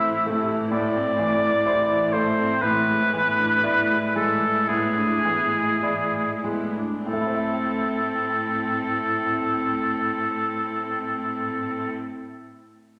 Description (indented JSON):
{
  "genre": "classical, romantic movement for piano and orchestra",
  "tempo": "47-67 BPM",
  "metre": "4/4",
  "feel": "rubato",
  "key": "A minor",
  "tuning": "A4 = 440 Hz",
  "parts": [
    { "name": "bright concert grand piano", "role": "melody", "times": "0.0-13.0 s", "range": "A2 to E5", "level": "-30 LUFS", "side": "equal", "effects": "none" },
    { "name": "warm oboe", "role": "second line", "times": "0.0-11.9 s", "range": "G#4 to E5", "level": "-25 LUFS", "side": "equal", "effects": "none" },
    { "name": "clear studio viola section", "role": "accompaniment", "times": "0.0-11.9 s", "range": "C3 to E4", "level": "-32 LUFS", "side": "equal", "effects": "none" },
    { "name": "rich studio cello section", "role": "bass", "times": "0.0-11.9 s", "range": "A2", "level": "-35 LUFS", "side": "equal", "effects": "none" }
  ],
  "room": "wet scoring stage reverb, RT60 1.9 s",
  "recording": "none",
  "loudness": "-23 LUFS",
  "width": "mono",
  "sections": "0.0-7.1 A section; 7.1-11.8 B section",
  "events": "slowing down 0.0-7.1",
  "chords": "0.0 Am; 2.6 E7/A; 7.1 Am"
}